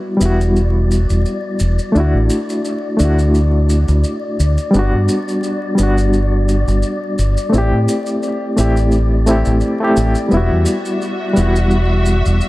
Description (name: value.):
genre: trip hop.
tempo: 86 BPM.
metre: 4/4.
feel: swing 54% on 16ths.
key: E minor.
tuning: A4 = 441 Hz.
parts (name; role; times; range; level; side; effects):
barky reed electric piano; accompaniment; 0.0-12.5 s; G3 to G4; -17 LUFS; equal; overdrive, fast tremolo, harmonic tremolo, tape echo.
wind-like tuned noise texture; texture; 0.0-12.5 s; D5; -27 LUFS; left 5 dB; built-in reverb.
deep dub fingered electric bass; bass; 0.2-12.4 s; E1 to A2; -14 LUFS; equal; none.
maracas; percussion; 0.2-12.5 s; none; -31 LUFS; equal; none.
clear symphonic string section; sustained chords; 10.3-12.5 s; F#4 to E5; -24 LUFS; left 1 dB; none.
room: small room ambience.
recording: dark, warm production, vinyl crackle.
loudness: -13 LUFS.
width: side -18 dB against mid.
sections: 0.0-12.5 A section.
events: none.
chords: 0.0 Emadd9; 2.0 Dadd9; 4.7 Gmaj7; 7.5 Am7; 10.3 Emadd9.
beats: 0.56 1.26 | 1.95 2.65 3.35 4.05 | 4.74 5.44 6.14 6.84 | 7.54 8.23 8.93 9.63 | 10.33 11.02 11.72 12.42.